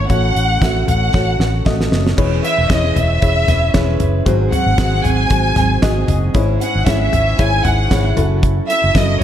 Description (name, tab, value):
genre	piano-driven pop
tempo	115 BPM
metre	4/4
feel	swing 56% on 16ths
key	E major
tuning	A4 = 440 Hz
part	warm studio violin section	melody	0.0-9.2 s	D#5 to G#5	-19 LUFS	equal	none
part	felt-muted upright piano	accompaniment	0.0-9.2 s	G#2 to E5	-22 LUFS	left 5 dB	none
part	picked steel-string acoustic guitar	riff	0.0-9.2 s	G#2 to B4	-24 LUFS	right 7 dB	none
part	vintage muted fingered electric bass	bass	0.0-9.2 s	E1 to A1	-17 LUFS	equal	none
part	damped 70s drum kit	drums	0.1-9.2 s	crash cymbal, hi-hat, kick drum, snare drum, toms	-18 LUFS	equal	none
room	moderate plate reverb, RT60 1.7 s, studio reverb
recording	dreamy mix soaked in reverb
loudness	-13 LUFS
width	side -10 dB against mid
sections	0.0-2.2 A section; 2.2-9.2 B section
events	drum fill 1.1-2.2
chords	0.1 F#m/A; 2.2 E6; 4.3 G#7; 6.3 C#m/G#; 8.2 F#m7